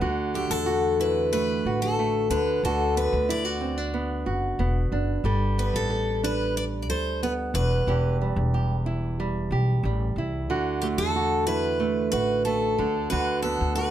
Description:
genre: acoustic pop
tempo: 92 BPM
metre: 4/4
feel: straight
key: unclear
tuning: A4 = 440 Hz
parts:
  - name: nylon-string guitar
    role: accompaniment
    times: 0.0-13.9 s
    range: E2 to A4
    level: -28 LUFS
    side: right 4 dB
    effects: none
  - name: upright bass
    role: bass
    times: 0.0-13.9 s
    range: E1 to E2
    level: -28 LUFS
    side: left 1 dB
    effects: none
  - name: picked steel-string acoustic guitar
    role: melody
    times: 0.4-13.9 s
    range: G4 to D5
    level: -26 LUFS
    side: left 2 dB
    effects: plate reverb
room: light reverb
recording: close, detailed microphones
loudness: -23 LUFS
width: side -11 dB against mid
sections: 0.0-13.9 A section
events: none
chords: 0.0 Dadd9; 2.3 Bm/D; 5.2 Gadd9; 7.5 Em; 10.5 Dadd9; 12.8 Bm/D

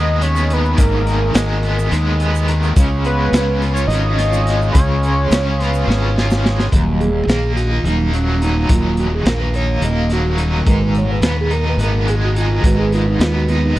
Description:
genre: psychedelic rock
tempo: 213 BPM (eighths)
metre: 7/8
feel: straight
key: Eb minor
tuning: A4 = 438 Hz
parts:
  - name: fat analog lead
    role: melody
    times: 0.0-6.1 s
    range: Bb4 to Eb5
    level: -22 LUFS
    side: equal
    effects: phaser, tape echo
  - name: mellow tonewheel organ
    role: sustained chords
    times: 0.0-13.8 s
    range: Eb3 to Eb6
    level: -22 LUFS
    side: right 3 dB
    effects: slow rotary speaker
  - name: cranked stack guitar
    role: riff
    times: 0.0-13.8 s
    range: Eb2 to F4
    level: -22 LUFS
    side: left 1 dB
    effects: overdrive, tremolo
  - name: fuzz fingered electric bass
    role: bass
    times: 0.0-13.8 s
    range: Eb1 to Eb2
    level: -17 LUFS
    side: equal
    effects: overdrive
  - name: crunchy breakbeat drum kit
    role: drums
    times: 0.2-13.8 s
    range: hi-hat, kick drum, snare drum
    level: -17 LUFS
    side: equal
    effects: none
  - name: egg shaker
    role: percussion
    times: 0.4-6.4 s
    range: none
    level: -37 LUFS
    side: right 11 dB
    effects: none
  - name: metallic inharmonic drone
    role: drone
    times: 8.1-13.8 s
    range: Eb2 to Bb2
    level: -29 LUFS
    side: equal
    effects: none
room: little or no reverb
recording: dry, close 1970s-style studio recording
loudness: -14 LUFS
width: side -16 dB against mid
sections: 0.0-6.7 A section; 6.7-13.8 B section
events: drum fill 5.9-6.7; tonewheel organ solo 6.7-13.8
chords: 0.0 Abm; 2.8 Db; 6.7 Ebm; 10.7 Abm

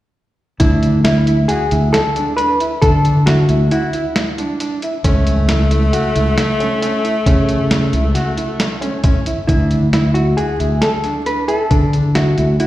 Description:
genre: progressive instrumental, band music in an uneven meter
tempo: 135 BPM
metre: 5/4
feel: straight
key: D lydian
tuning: A4 = 436 Hz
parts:
  - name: hollow-body jazz guitar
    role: melody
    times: 0.6-4.3, 9.5-12.7 s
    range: E4 to B4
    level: -18 LUFS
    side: equal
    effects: slapback echo
  - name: warm grand piano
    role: arpeggios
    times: 0.6-12.7 s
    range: C#4 to F#4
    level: -23 LUFS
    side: right 2 dB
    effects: slapback echo
  - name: fingered electric bass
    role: bass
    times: 0.6-12.6 s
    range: C#2 to D3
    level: -14 LUFS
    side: equal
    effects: none
  - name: lo-fi sampler-style drum kit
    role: drums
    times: 0.6-12.7 s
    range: hi-hat, kick drum, snare drum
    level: -18 LUFS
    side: equal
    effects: slapback echo
  - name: clear alto saxophone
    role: second line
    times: 5.0-9.2 s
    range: A3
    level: -19 LUFS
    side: left 2 dB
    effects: slapback echo, tape echo
room: light reverb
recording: live gig heard through the venue's PA, recital hall reverb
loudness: -13 LUFS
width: side -15 dB against mid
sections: 0.6-9.5 A section; 9.5-12.7 B section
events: break 9.3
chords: 0.6 Dsus2; 5.0 A/C#; 9.5 Dsus2

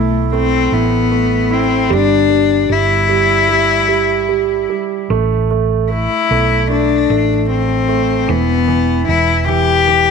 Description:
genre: pop ballad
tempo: 76 BPM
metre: 4/4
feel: straight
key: A minor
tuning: A4 = 440 Hz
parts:
  - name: warm cello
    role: melody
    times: 0.0-10.1 s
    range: A3 to G4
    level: -14 LUFS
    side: left 8 dB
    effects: tape echo
  - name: warm grand piano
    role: accompaniment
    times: 0.0-10.1 s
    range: E3 to E4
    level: -18 LUFS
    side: right 15 dB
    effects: none
  - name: hollow-body short-scale fingered electric bass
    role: bass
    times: 0.0-10.1 s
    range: E1 to B1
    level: -18 LUFS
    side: right 1 dB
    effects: none
room: moderate echo chamber reverb, RT60 1.6 s, small room ambience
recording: 1960s-style stereo with parts hard left and right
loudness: -12 LUFS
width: side -5 dB against mid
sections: 0.0-10.1 A section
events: none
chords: 0.0 A5; 1.9 G5; 5.1 Am; 8.3 Em

